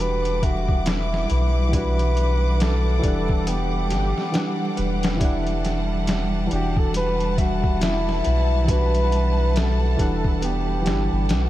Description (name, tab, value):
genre	trip hop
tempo	69 BPM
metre	4/4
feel	swing 59% on 16ths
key	E minor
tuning	A4 = 440 Hz
part	trumpet with bucket mute	melody	0.0-11.5 s	E4 to B4	-27 LUFS	equal	dub echo
part	barky reed electric piano	accompaniment	0.0-11.5 s	E3 to F#5	-28 LUFS	equal	overdrive, harmonic tremolo, tape echo
part	clear symphonic string section	sustained chords	0.0-11.5 s	G3 to D6	-29 LUFS	equal	none
part	soft dub sub bass	bass	0.0-11.5 s	E1 to B1	-23 LUFS	equal	none
part	trip hop sampler-style drum kit	drums	0.3-11.5 s	hi-hat, kick drum, snare drum	-25 LUFS	equal	small room reverb
part	nylon-string guitar	arpeggios	0.4-11.3 s	B3 to E5	-33 LUFS	right 2 dB	analog delay
room	moderate huge ambient reverb, RT60 7.4 s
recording	dreamy mix soaked in reverb, vinyl crackle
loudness	-19 LUFS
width	side -14 dB against mid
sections	0.0-11.5 A section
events	none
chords	0.0 Em9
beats	0.86 | 1.73 2.60 3.47 4.34 | 5.21 6.08 6.95 7.82 | 8.68 9.55 10.42 11.29